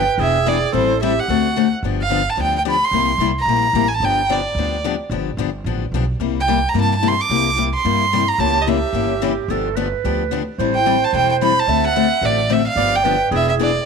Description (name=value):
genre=acoustic string swing (jazz manouche)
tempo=220 BPM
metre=4/4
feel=swing 56% on 8ths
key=G mixolydian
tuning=A4 = 443 Hz
part: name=clear violin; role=melody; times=0.0-13.9 s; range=C5 to D6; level=-18 LUFS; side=right 3 dB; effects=none
part: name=growling clarinet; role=second line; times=0.0-1.7, 8.4-13.8 s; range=F#4 to E5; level=-22 LUFS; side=right 15 dB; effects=none
part: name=picked steel-string acoustic guitar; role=accompaniment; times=0.0-13.7 s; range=C3 to A4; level=-21 LUFS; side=left 15 dB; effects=none
part: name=upright bass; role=bass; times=0.0-13.8 s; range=E1 to G2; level=-23 LUFS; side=right 1 dB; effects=none
room=light reverb, small room ambience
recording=1960s-style stereo with parts hard left and right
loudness=-15 LUFS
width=side -5 dB against mid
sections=0.0-1.8 A section; 1.8-13.9 A section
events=none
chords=0.2 E7; 0.7 Am7; 1.3 D7; 1.8 G7; 2.9 C7; 4.0 G7; 6.2 C7; 8.4 C#dim7; 9.5 G7; 10.6 Am7; 11.7 D7; 12.8 G7; 13.3 E7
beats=0.19 0.47 | 0.74 1.01 1.28 1.56 | 1.83 2.10 2.38 2.65 | 2.93 3.20 3.47 3.75 | 4.02 4.29 4.57 4.84 | 5.11 5.39 5.66 5.93 | 6.21 6.48 6.75 7.03 | 7.30 7.57 7.85 8.12 | 8.39 8.67 8.94 9.21 | 9.49 9.76 10.04 10.31 | 10.59 10.86 11.13 11.41 | 11.68 11.95 12.23 12.50 | 12.77 13.05 13.32 13.59